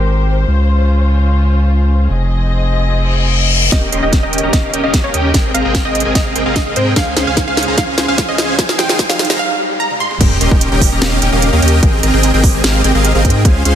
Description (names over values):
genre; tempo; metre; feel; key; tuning
future bass; 148 BPM; 4/4; half-time; Ab major; A4 = 440 Hz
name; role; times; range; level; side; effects
muted studio string section; sustained chords; 0.0-13.8 s; Db3 to Eb5; -23 LUFS; left 2 dB; sidechain pumping, low-pass filter
saturated sub bass; bass; 0.0-13.7 s; Eb1 to Ab2; -15 LUFS; equal; tube saturation, sidechain pumping
reverse cymbal, riser and sub drop; sound effects; 3.1-11.8 s; none; -22 LUFS; left 2 dB; none
wide unison pluck; melody; 3.7-10.1 s; C5 to C6; -20 LUFS; right 1 dB; sidechain pumping, dub echo
dense compressed supersaw; riff; 3.7-13.7 s; C4 to C6; -16 LUFS; equal; sidechain pumping, low-pass filter
electronic kick drum; drums; 3.7-13.5 s; none; -13 LUFS; equal; none
trap drum kit; drums; 3.7-13.7 s; crash cymbal, hi-hat, snare drum, toms; -18 LUFS; right 1 dB; soft clipping on snare
room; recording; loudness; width
light reverb, digital ambience; dense, heavily limited modern master, high-pass filter; -11 LUFS; side -10 dB against mid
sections
0.0-3.7 A section; 3.7-10.2 B section; 10.2-13.8 C section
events
reverse cymbal 3.1-3.7; build-up 3.7-10.2; drum fill 3.7-9.4, 9.9-10.2; riser 3.7-10.2; filter sweep 3.7-10.2; break 9.4-10.2; drop 10.2-13.8; impact 10.2-11.8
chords
0.5 Dbmaj7; 2.1 Fm7; 3.7 Eb7; 5.3 Abmaj9; 7.0 Dbmaj7; 8.6 Fm7; 10.2 Eb7; 11.8 Abmaj9